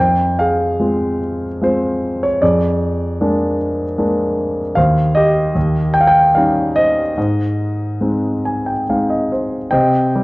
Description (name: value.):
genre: classical, lyrical solo piano.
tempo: 67-77 BPM.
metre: 3/4.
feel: rubato.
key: Ab major.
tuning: A4 = 441 Hz.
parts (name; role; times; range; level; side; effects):
warm concert grand piano; solo; 0.0-10.2 s; Eb2 to Ab5; -14 LUFS; equal; none.
room: moderate recital hall reverb, RT60 1.5 s.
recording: worn, warbling old tape, cassette tape, warbly pitch drift.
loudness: -14 LUFS.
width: side -22 dB against mid.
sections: 0.0-9.7 A section.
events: grand piano fill 8.0-9.7.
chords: 0.0 Fm; 2.4 Bb7/F; 4.8 Eb69; 5.6 Eb7; 7.2 Ab.